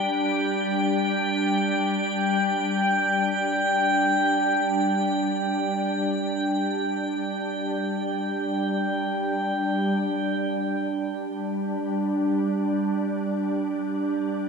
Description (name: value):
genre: ambient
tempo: free time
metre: none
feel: none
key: unclear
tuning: A4 = 440 Hz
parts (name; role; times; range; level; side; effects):
- organ-like drone; drone; 0.0-14.5 s; G3 to D4; -25 LUFS; equal; ensemble chorus, built-in reverb
- drifting glass-harmonics texture; texture; 0.0-10.2 s; G5; -26 LUFS; equal; chorus, built-in reverb
room: wet cathedral reverb, RT60 6.1 s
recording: none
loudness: -22 LUFS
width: side -5 dB against mid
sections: 0.0-10.2 A section; 10.2-14.5 B section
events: none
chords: 0.0 G5